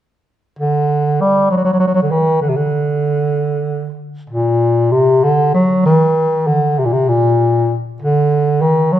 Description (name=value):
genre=persian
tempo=65 BPM (dotted quarters)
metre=6/8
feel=straight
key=D dastgah homayun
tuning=A4 = 439 Hz
part: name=breathy bass clarinet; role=melody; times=0.6-9.0 s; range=Bb2 to G3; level=-12 LUFS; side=equal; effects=none
room=moderate recital hall reverb, RT60 1.4 s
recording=minimal, uncompressed stereo recording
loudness=-12 LUFS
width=side -11 dB against mid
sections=0.6-4.3 A section; 4.3-9.0 B section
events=none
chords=none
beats=| 0.59 1.52 | 2.44 3.37 | 4.30 5.22 | 6.15 7.08 | 8.00 8.93